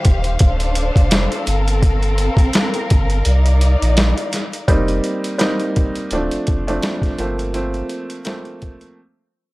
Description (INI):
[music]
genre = hip hop, boom-bap hip-hop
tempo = 84 BPM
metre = 4/4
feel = swing 57% on 16ths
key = unclear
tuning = A4 = 440 Hz
[part]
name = warm studio string section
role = sustained chords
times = 0.0-4.7 s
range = Eb3 to F5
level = -22 LUFS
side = left 2 dB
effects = high-pass filter, low-pass filter
[part]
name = boom bap sampler-style drum kit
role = drums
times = 0.0-9.0 s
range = hi-hat, kick drum, snare drum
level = -17 LUFS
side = equal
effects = none
[part]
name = sub bass with octave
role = bass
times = 0.1-7.8 s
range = D1 to C2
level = -18 LUFS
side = equal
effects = none
[part]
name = warm upright piano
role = accompaniment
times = 4.7-9.0 s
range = F3 to Eb4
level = -21 LUFS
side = right 1 dB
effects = cassette tape, high-pass filter, low-pass filter
[sound]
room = little or no reverb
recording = dry, gritty hardware recording, transformer saturation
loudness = -15 LUFS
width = side -20 dB against mid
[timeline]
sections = 0.0-4.7 A section; 4.7-9.5 B section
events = break 0.0-4.7, 9.0-9.5; kick muted 3.3-4.7; fade-out 4.7-9.5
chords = 0.4 Dm7; 1.5 Gm11; 3.3 Cm11; 4.7 F9sus4; 6.1 Dm7; 7.2 Gm11; 9.0 N.C.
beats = 0.40 1.11 | 1.82 2.54 3.25 3.97 | 4.68 5.40 6.11 6.83 | 7.54 8.25 8.97